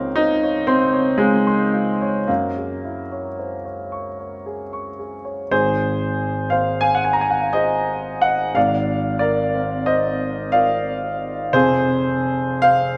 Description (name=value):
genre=classical, impressionist solo piano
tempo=53-62 BPM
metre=3/4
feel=rubato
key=Ab mixolydian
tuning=A4 = 440 Hz
part: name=warm grand piano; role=solo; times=0.0-13.0 s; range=F1 to Db6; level=-20 LUFS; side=equal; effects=none
room=wet concert hall reverb, RT60 2.1 s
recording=none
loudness=-20 LUFS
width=mono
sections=0.0-5.5 A section; 5.5-13.0 B section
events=none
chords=0.0 Dbmaj9; 2.3 Gb9; 5.5 Ab69; 8.6 Bbadd9/Ab; 11.5 Fm